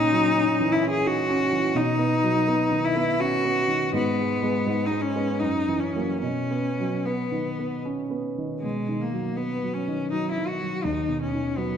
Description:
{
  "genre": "classical, romantic duo for cello and grand piano",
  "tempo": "71-86 BPM",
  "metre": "3/4",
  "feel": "rubato",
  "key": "B major",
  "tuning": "A4 = 440 Hz",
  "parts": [
    { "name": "clear cello", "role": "melody", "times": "0.0-11.8 s", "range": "G#3 to G#4", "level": "-24 LUFS", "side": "left 2 dB", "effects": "none" },
    { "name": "warm grand piano", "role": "accompaniment", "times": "0.0-11.8 s", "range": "D#2 to D#4", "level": "-26 LUFS", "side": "right 3 dB", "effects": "none" }
  ],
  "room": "wet scoring stage reverb, RT60 1.6 s",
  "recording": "dark, warm production",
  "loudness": "-22 LUFS",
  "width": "side -8 dB against mid",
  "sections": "0.0-8.6 A section; 8.6-11.8 B section",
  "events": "none",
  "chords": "0.0 F#7/A#; 1.8 B; 3.9 G#m; 5.4 F#7; 6.2 B; 10.9 B/D#",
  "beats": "0.36 1.06 | 1.76 2.48 3.21 | 3.94 4.67 5.42 | 6.23 7.06 7.85 | 8.63 9.38 10.13 | 10.86 11.58"
}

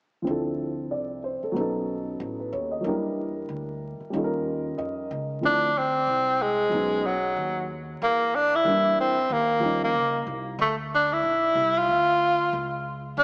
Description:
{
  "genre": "hip hop, jazz-hop",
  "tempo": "93 BPM",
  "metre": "4/4",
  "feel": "swing 60% on 16ths",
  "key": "unclear",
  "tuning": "A4 = 440 Hz",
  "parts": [
    { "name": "dark upright piano", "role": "accompaniment", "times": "0.2-9.9 s", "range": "E3 to D#5", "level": "-28 LUFS", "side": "equal", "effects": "none" },
    { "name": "upright bass", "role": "bass", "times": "0.3-13.2 s", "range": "A1 to G2", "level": "-36 LUFS", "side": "equal", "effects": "none" },
    { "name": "breathy tenor saxophone", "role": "melody", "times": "5.5-13.2 s", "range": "F#3 to F4", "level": "-21 LUFS", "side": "equal", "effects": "none" }
  ],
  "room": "wet plate reverb, RT60 2.6 s",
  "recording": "dreamy mix soaked in reverb, vinyl crackle, small speaker sound",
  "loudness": "-22 LUFS",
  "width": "side -32 dB against mid",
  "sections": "0.3-5.4 A section; 5.4-13.2 B section",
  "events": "upright piano fill 4.5-5.4",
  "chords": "0.3 Dm9; 1.6 B7; 2.8 Em7b5; 4.1 Eb9; 5.4 Dm9; 6.7 B; 8.0 Em7b5; 9.3 Eb9; 10.6 Dmadd9",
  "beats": "| 0.27 0.91 1.56 2.20 | 2.85 3.49 4.14 4.78 | 5.43 6.07 6.72 7.36 | 8.01 8.65 9.30 9.94 | 10.59 11.23 11.88 12.52 | 13.17"
}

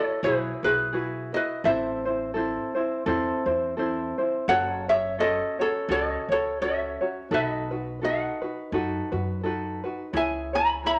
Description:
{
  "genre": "Hawaiian",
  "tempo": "85 BPM",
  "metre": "4/4",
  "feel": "swing 57% on 8ths",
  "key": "unclear",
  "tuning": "A4 = 441 Hz",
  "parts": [
    { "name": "ukulele", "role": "melody", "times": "0.0-11.0 s", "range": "G#4 to B5", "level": "-27 LUFS", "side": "equal", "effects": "none" },
    { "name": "tenor ukulele", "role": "accompaniment", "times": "0.0-11.0 s", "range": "C4 to C#5", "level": "-30 LUFS", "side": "equal", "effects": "none" },
    { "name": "upright bass", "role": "bass", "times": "0.2-11.0 s", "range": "F#1 to F#2", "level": "-38 LUFS", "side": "equal", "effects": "none" }
  ],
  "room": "moderate large studio reverb, RT60 1.1 s",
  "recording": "nothing above 10.9 kHz",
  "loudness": "-27 LUFS",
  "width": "mono",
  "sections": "0.0-11.0 A section",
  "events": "none",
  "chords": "0.0 Eadd9; 1.6 Am; 4.5 F#m; 7.3 B7; 10.1 C#m7",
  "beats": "0.22 0.93 | 1.64 2.35 3.06 3.77 | 4.47 5.18 5.89 6.60 | 7.31 8.01 8.72 9.43 | 10.14 10.84"
}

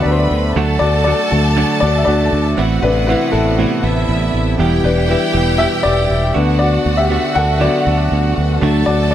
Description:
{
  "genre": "pop",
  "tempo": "119 BPM",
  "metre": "4/4",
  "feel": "straight",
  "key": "E minor",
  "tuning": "A4 = 440 Hz",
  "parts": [
    { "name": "rich studio violin section", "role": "second line", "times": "0.0-9.1 s", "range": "E4 to B5", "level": "-21 LUFS", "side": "left 1 dB", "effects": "none" },
    { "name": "warm upright piano", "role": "accompaniment", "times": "0.0-9.1 s", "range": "C3 to F#5", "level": "-17 LUFS", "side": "left 3 dB", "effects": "none" },
    { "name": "direct-recorded clean electric guitar", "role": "riff", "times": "0.0-9.1 s", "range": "E2 to G4", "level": "-21 LUFS", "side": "right 7 dB", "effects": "lush chorus" },
    { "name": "fingered electric bass", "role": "bass", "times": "0.1-9.1 s", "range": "E1 to D2", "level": "-17 LUFS", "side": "right 1 dB", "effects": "none" }
  ],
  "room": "light reverb",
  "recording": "none",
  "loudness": "-12 LUFS",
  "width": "side -11 dB against mid",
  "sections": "0.0-4.6 A section; 4.6-9.1 A section",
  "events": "upright piano solo 0.0-4.6, 4.6-9.1",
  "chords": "0.0 Bm/D; 0.6 D; 2.6 Amadd9; 4.6 Em; 6.4 Bm/D; 8.6 D",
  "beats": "0.06 | 0.56 1.06 1.57 2.07 | 2.58 3.08 3.58 4.09 | 4.59 5.09 5.60 6.10 | 6.61 7.11 7.61 8.12 | 8.62 9.12"
}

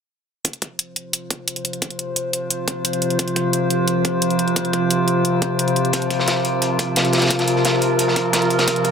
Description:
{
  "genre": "dark technical drum and bass",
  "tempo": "175 BPM",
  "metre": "4/4",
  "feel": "straight",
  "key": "unclear",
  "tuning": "A4 = 440 Hz",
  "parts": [
    { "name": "metallic inharmonic drone", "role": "sustained chords", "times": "1.5-8.9 s", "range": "C3 to C5", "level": "-18 LUFS", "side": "equal", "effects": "chorus, built-in reverb, sidechain pumping" },
    { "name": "electronic hi-hat", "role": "drums", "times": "0.4-8.9 s", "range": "none", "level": "-22 LUFS", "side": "equal", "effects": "overdrive" },
    { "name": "electronic kick drum", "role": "drums", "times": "0.4-8.9 s", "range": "none", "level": "-28 LUFS", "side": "equal", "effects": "overdrive, high-pass filter on kick, high-pass filter on room" },
    { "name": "crunchy breakbeat drum kit", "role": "drums", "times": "5.9-8.9 s", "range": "hi-hat, snare drum", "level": "-22 LUFS", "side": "equal", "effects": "high-pass filter on hats, high-pass filter on snare, high-pass filter on room" }
  ],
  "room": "moderate lush hall reverb, RT60 2.0 s, small room ambience",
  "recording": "none",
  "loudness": "-17 LUFS",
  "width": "side -6 dB against mid",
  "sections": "0.4-8.9 A section",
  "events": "filter sweep on synth drone 0.4-8.9",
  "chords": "0.4 F5",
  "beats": "| 0.45 0.79 1.13 1.48 | 1.82 2.16 2.50 2.85 | 3.19 3.53 3.88 4.22 | 4.56 4.91 5.25 5.59 | 5.93 6.28 6.62 6.96 | 7.30 7.65 7.99 8.33 | 8.68"
}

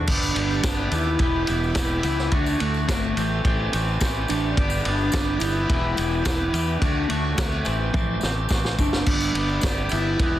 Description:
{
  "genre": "indie rock",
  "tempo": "107 BPM",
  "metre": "4/4",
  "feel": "straight",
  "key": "G major",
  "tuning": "A4 = 439 Hz",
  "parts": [
    { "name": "overdriven synth lead", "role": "melody", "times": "0.0-10.4 s", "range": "A3 to E4", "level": "-27 LUFS", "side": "equal", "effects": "phaser" },
    { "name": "bright tonewheel organ", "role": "sustained chords", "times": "0.0-10.4 s", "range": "F#4 to B5", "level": "-39 LUFS", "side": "equal", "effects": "none" },
    { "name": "twangy electric guitar", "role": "riff", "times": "0.0-10.4 s", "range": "E3 to G4", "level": "-28 LUFS", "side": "equal", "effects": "spring reverb" },
    { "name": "fuzz fingered electric bass", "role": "bass", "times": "0.1-10.4 s", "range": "E1 to E2", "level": "-26 LUFS", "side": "equal", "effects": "overdrive" },
    { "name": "vintage drum kit", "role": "drums", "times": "0.1-10.3 s", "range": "crash cymbal, kick drum, ride cymbal, snare drum, toms", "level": "-24 LUFS", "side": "equal", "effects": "none" },
    { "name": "tambourine", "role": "percussion", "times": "0.2-10.0 s", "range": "none", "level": "-39 LUFS", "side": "left 5 dB", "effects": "none" }
  ],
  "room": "little or no reverb",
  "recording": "dense, heavily limited modern master",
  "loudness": "-20 LUFS",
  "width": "side -13 dB against mid",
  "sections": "0.1-10.4 A section",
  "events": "drum fill 7.9-9.1",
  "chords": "0.1 G; 1.2 Em; 2.3 D; 3.2 Am7; 4.6 G; 5.7 Em; 6.8 D; 7.7 Am7; 9.1 G",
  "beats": "| 0.08 0.64 1.20 1.76 | 2.32 2.88 3.45 4.01 | 4.57 5.13 5.69 6.25 | 6.82 7.38 7.94 8.50 | 9.06 9.63 10.19"
}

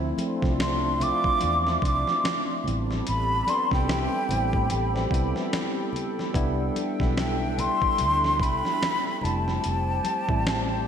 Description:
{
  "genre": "R&B, neo-soul",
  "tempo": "73 BPM",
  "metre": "4/4",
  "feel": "swing 60% on 16ths",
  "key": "D dorian",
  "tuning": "A4 = 441 Hz",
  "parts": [
    { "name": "tine electric piano", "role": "accompaniment", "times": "0.0-10.9 s", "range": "F3 to F4", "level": "-31 LUFS", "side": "right 1 dB", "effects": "fast stereo tremolo" },
    { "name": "hollow soft pad", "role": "sustained chords", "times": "0.0-10.9 s", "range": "D4 to C6", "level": "-33 LUFS", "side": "equal", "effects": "chorus" },
    { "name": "vintage muted fingered electric bass", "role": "bass", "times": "0.0-10.9 s", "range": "F1 to A2", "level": "-28 LUFS", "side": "equal", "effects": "none" },
    { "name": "muted trombone section", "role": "stabs", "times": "0.2-5.5 s", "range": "C3 to F4", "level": "-37 LUFS", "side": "left 2 dB", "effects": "tape echo" },
    { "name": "dusty soul sampler-style drum kit", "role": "drums", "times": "0.2-10.7 s", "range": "hi-hat, kick drum, snare drum", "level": "-30 LUFS", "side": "equal", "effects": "none" },
    { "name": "congas", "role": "percussion", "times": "0.2-10.7 s", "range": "none", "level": "-40 LUFS", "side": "left 2 dB", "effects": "none" },
    { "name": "breathy concert flute", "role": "melody", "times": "0.6-10.9 s", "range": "G5 to D6", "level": "-26 LUFS", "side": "equal", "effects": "tape echo" }
  ],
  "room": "wet lush hall reverb, RT60 2.0 s",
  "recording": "dreamy mix soaked in reverb",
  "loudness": "-22 LUFS",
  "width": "side -8 dB against mid",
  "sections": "0.0-10.9 A section",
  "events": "none",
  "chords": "0.0 Dm9; 2.6 Am9; 6.3 Cmaj9; 9.2 Fmaj9",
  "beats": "0.59 1.41 2.23 | 3.05 3.88 4.70 5.52 | 6.34 7.16 7.99 8.81 | 9.63 10.45"
}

